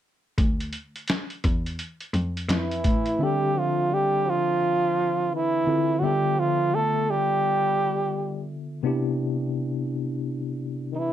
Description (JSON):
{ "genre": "hip hop, jazz-hop", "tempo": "85 BPM", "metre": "4/4", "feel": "swing 62% on 16ths", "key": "D dorian", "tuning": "A4 = 440 Hz", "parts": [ { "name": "rich cello", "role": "bass", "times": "0.4-3.2 s", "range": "D2 to A2", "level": "-27 LUFS", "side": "equal", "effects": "none" }, { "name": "boom bap sampler-style drum kit", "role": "drums", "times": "0.4-3.2 s", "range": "hi-hat, kick drum, snare drum", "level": "-26 LUFS", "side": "equal", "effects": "none" }, { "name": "breathy flugelhorn", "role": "melody", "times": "2.5-11.1 s", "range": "Eb4 to A4", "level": "-24 LUFS", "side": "right 4 dB", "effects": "none" }, { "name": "clear trombone", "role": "second line", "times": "2.5-11.1 s", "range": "Eb3 to A3", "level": "-30 LUFS", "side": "left 8 dB", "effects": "none" }, { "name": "tine electric piano", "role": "accompaniment", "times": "3.2-11.1 s", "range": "C3 to E5", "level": "-27 LUFS", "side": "left 2 dB", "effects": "overdrive, medium stereo tremolo" } ], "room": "light reverb", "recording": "none", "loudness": "-22 LUFS", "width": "side -11 dB against mid", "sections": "0.4-3.2 A section; 3.2-11.1 B section", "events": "none", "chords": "0.4 Dmadd9; 3.2 Dm9; 6.0 G13/D; 8.8 Cmaj7" }